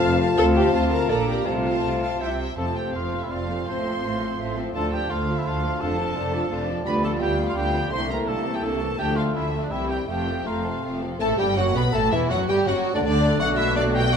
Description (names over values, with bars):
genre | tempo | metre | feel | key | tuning
classical | 166 BPM | 3/4 | straight | F major | A4 = 440 Hz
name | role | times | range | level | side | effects
warm studio violin section | melody | 0.0-14.2 s | D5 to C6 | -31 LUFS | left 5 dB | none
mellow clarinet | second line | 0.0-14.2 s | C4 to F5 | -33 LUFS | left 2 dB | none
mellow cor anglais | second line | 0.0-14.2 s | D4 to A5 | -31 LUFS | right 2 dB | none
silver concert flute | second line | 0.0-14.2 s | C5 to F#6 | -33 LUFS | left 1 dB | none
warm symphonic violin section | second line | 0.0-14.2 s | A3 to F5 | -33 LUFS | left 3 dB | none
mellow bassoon | accompaniment | 0.0-14.2 s | D3 to C4 | -31 LUFS | right 1 dB | none
rich symphonic viola section | accompaniment | 0.0-14.2 s | C3 to F5 | -30 LUFS | right 2 dB | none
dark French horn section | sustained chords | 0.0-14.2 s | D3 to F4 | -29 LUFS | left 3 dB | none
rich symphonic cello section | bass | 0.0-14.2 s | C2 to C3 | -29 LUFS | right 1 dB | none
rich symphonic double bass section | bass | 0.0-14.2 s | E1 to D2 | -29 LUFS | right 1 dB | none
timpani | percussion | 1.5-2.0 s | none | barely audible | none | none
mellow trombone section | sustained chords | 11.2-14.2 s | B2 to B3 | -29 LUFS | right 4 dB | none
room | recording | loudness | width
wet recital hall reverb, RT60 1.8 s | minimal, uncompressed stereo recording | -21 LUFS | side -7 dB against mid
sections
0.0-2.6 A section; 2.6-11.2 B section; 11.2-14.2 C section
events
none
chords
0.4 Dm7; 1.1 Gm/Bb; 1.5 F/C; 2.2 C; 2.6 F; 3.7 F/A; 4.7 Dm; 5.8 Dm/F; 6.9 G7/D; 7.9 C13; 9.0 Dm; 9.7 C; 10.1 F; 11.2 Gmaj13; 12.3 D/F#; 13.4 Bm7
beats
0.03 | 0.38 0.73 1.10 | 1.47 1.83 2.20 | 2.58 2.94 3.30 | 3.67 4.03 4.38 | 4.74 5.09 5.45 | 5.80 6.15 6.50 | 6.86 7.21 7.57 | 7.92 8.27 8.63 | 8.99 9.35 9.71 | 10.08 10.46 10.83 | 11.20 11.57 11.94 | 12.30 12.67 13.04 | 13.40 13.76 14.12